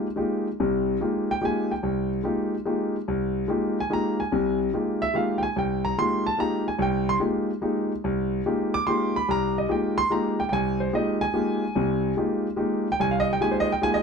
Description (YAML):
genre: jazz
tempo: 145 BPM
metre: 3/4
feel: swing 67% on 8ths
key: F minor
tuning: A4 = 440 Hz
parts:
  - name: warm concert grand piano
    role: solo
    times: 0.0-14.0 s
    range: C2 to D6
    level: -23 LUFS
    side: equal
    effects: none
room: light reverb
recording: dark, warm production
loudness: -23 LUFS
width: side -5 dB against mid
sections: 0.0-14.0 A section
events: none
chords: 0.0 Fm11